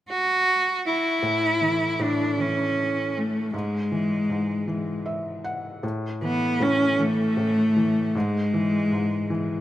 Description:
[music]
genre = pop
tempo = 52 BPM (dotted quarters)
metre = 6/8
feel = straight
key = A major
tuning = A4 = 439 Hz
[part]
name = rich cello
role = melody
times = 0.1-9.6 s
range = G#3 to F#4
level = -22 LUFS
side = equal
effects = digital delay
[part]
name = felt-muted upright piano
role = accompaniment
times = 1.2-9.6 s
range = G#2 to F#5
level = -28 LUFS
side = equal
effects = none
[sound]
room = moderate lush hall reverb, RT60 2.2 s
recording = rough home demo mix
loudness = -22 LUFS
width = side -13 dB against mid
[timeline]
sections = 0.0-1.2 A section; 1.2-5.8 B section; 5.8-9.6 C section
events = felt piano fill 4.7-5.8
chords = 0.0 N.C.; 1.2 A; 3.5 E/G#; 5.8 A5; 8.1 E/G#

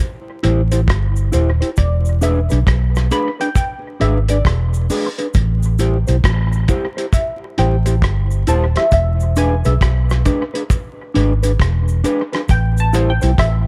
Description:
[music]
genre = roots reggae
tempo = 67 BPM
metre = 4/4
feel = swing 64% on 16ths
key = A minor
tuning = A4 = 440 Hz
[part]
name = filtered dub chord stab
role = stabs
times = 0.0-13.7 s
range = C5 to B5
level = -24 LUFS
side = equal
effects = phaser
[part]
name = mellow electric guitar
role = accompaniment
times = 0.4-13.3 s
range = D4 to C5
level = -24 LUFS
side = equal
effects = analog chorus, tape echo
[part]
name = vintage muted fingered electric bass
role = bass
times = 0.4-13.7 s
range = D#1 to B1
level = -18 LUFS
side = equal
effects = none
[part]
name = cloth-damped thuddy drum kit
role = drums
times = 0.4-13.7 s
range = hi-hat, kick drum, rim click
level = -21 LUFS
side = equal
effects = none
[part]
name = cabasa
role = percussion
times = 0.7-13.4 s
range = none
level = -39 LUFS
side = equal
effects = none
[sound]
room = studio reverb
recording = vinyl crackle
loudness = -16 LUFS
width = mono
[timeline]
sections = 0.0-13.7 A section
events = synth stab solo 0.0-13.7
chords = 0.0 Am7; 1.8 E7; 5.3 Am7; 8.9 E7; 12.5 Am7

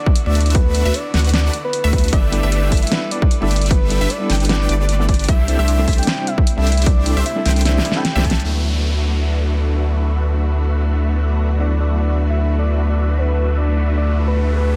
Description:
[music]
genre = future bass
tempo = 152 BPM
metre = 4/4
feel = swing 54% on 16ths, half-time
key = D mixolydian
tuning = A4 = 441 Hz
[part]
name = soft octave-layered synth lead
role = melody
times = 0.0-8.4, 11.6-14.7 s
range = B4 to A5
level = -28 LUFS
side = equal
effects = chorus, sidechain pumping, dub echo
[part]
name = bright studio string section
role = sustained chords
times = 0.0-14.7 s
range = C3 to B4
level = -35 LUFS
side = equal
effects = sidechain pumping
[part]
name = electronic kick drum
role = drums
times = 0.1-8.3 s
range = none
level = -18 LUFS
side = equal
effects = none
[part]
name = big-room dance drum kit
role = drums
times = 0.2-8.5 s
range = hi-hat, snare drum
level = -25 LUFS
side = equal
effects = low-pass filter on hats, low-pass filter on cymbals, low-pass filter on snare
[part]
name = unison pluck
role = arpeggios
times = 0.3-8.4 s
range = D5 to G5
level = -34 LUFS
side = equal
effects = none
[part]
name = supersaw chords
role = riff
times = 0.3-14.7 s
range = A3 to G5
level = -28 LUFS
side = equal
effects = phaser, sidechain pumping, low-pass filter
[part]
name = saturated sub bass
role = bass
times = 0.3-14.7 s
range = G1 to D2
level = -19 LUFS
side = equal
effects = sidechain pumping
[part]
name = mellow tine electric piano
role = accompaniment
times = 2.3-14.7 s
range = F#3 to C5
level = -30 LUFS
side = equal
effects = medium tremolo, sidechain pumping, dub echo
[part]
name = downlifter and riser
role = sound effects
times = 8.4-14.8 s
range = none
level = -35 LUFS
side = equal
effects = none
[sound]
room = little or no reverb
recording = dense, heavily limited modern master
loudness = -17 LUFS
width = mono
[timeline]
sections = 0.0-8.4 A section; 8.4-14.8 B section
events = drop 0.0-8.4; drum fill 7.7-8.4; band accent 8.3; riser 13.5-14.8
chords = 0.0 D69; 2.1 G69; 5.3 C69; 8.4 D69

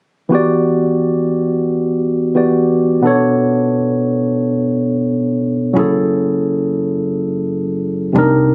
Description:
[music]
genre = R&B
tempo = 88 BPM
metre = 4/4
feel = swing 58% on 16ths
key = E dorian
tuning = A4 = 440 Hz
[part]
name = barky tine electric piano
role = accompaniment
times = 0.3-8.5 s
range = B2 to D5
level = -16 LUFS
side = equal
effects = none
[part]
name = upright bass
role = bass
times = 5.8-8.5 s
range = F#1 to C2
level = -24 LUFS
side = equal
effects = none
[sound]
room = moderate plate reverb, RT60 2.6 s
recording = recorded on a phone in the room, studio reverb, compression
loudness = -16 LUFS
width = mono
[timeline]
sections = 0.3-8.5 A section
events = none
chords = 0.3 Em9; 3.0 Bm9; 5.8 F#m9

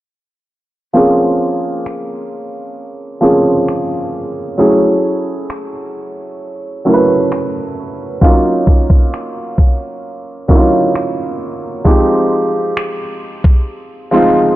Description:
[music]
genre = contemporary R&B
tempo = 66 BPM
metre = 4/4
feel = straight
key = Bb minor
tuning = A4 = 440 Hz
[part]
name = felt-muted upright piano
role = accompaniment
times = 0.9-14.6 s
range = F3 to Cb5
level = -14 LUFS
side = right 1 dB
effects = none
[part]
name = smooth R&B drum kit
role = drums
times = 1.9-13.7 s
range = finger snaps, kick drum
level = -11 LUFS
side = equal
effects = soft clipping on snare
[sound]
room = light reverb, small room ambience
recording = blown-out, overdriven recording, overdrive, low-pass filter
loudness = -11 LUFS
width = side -15 dB against mid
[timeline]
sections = 0.9-14.6 A section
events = filter sweep 0.9-14.6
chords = 0.9 Bbm9; 4.6 Gbm9; 8.2 Ebm9; 11.9 Fm9

